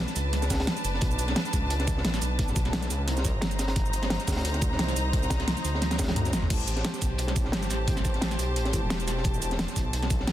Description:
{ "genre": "liquid drum and bass", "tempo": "175 BPM", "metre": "4/4", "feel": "swing 54% on 16ths", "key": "unclear", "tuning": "A4 = 440 Hz", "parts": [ { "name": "rich symphonic string section", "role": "sustained chords", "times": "0.0-10.3 s", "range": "D4 to Bb5", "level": "-33 LUFS", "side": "equal", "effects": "none" }, { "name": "swelling detuned saw bass", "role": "bass", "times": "0.0-10.3 s", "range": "E1 to D2", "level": "-29 LUFS", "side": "equal", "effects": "none" }, { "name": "crunchy breakbeat drum kit", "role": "drums", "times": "0.1-10.3 s", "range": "hi-hat, snare drum", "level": "-35 LUFS", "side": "equal", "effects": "high-pass filter on hats, high-pass filter on snare, high-pass filter on room" }, { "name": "pop drum kit", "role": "drums", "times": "0.1-10.3 s", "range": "cabasa, crash cymbal, hi-hat, snare drum, toms", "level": "-30 LUFS", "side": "right 1 dB", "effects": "overdrive" }, { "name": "electronic kick drum", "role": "drums", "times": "0.5-10.2 s", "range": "none", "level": "-28 LUFS", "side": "equal", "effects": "overdrive" } ], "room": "light reverb, small room ambience", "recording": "dense, heavily limited modern master", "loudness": "-25 LUFS", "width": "side -12 dB against mid", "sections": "0.0-6.5 A section; 6.5-10.3 A section", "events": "drop 0.0-6.5, 6.5-10.3; drum fill 5.8-6.5; kick drops out 6.2-6.5", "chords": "0.0 Bm7; 3.1 Cm7; 6.5 Am7" }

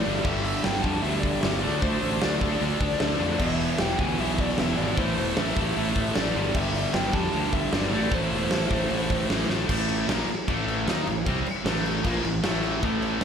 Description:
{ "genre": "hard rock", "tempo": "153 BPM", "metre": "4/4", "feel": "straight", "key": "A minor", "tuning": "A4 = 440 Hz", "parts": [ { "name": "biting lead guitar", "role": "melody", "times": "0.0-9.3 s", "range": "C5 to A5", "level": "-32 LUFS", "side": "equal", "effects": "overdrive, plate reverb, slapback echo, tape echo" }, { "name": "distorted electric guitar", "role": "riff", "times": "0.0-13.2 s", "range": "E2 to D#4", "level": "-30 LUFS", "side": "left 10 dB", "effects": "overdrive, slapback echo" }, { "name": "high-gain distorted guitar", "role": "riff", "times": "0.0-13.2 s", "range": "E2 to D#4", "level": "-31 LUFS", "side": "right 1 dB", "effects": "distortion" }, { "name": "sludgy distorted guitar", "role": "riff", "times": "0.0-13.2 s", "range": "E2 to D#4", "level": "-32 LUFS", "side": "right 10 dB", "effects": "overdrive" }, { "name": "fuzz fingered electric bass", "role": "bass", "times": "0.1-13.2 s", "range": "E1 to F2", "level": "-30 LUFS", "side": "equal", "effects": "overdrive" }, { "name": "big rock drum kit", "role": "drums", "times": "0.1-13.2 s", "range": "crash cymbal, hi-hat, kick drum, snare drum", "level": "-28 LUFS", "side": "equal", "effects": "none" } ], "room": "light reverb", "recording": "live gig heard through the venue's PA, club reverb", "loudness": "-23 LUFS", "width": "side -7 dB against mid", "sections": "0.0-9.7 A section; 9.7-13.2 B section", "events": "drum fill 9.5", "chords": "0.0 G5; 1.6 D5; 3.4 E5; 5.0 A5; 6.3 G5; 7.9 Am" }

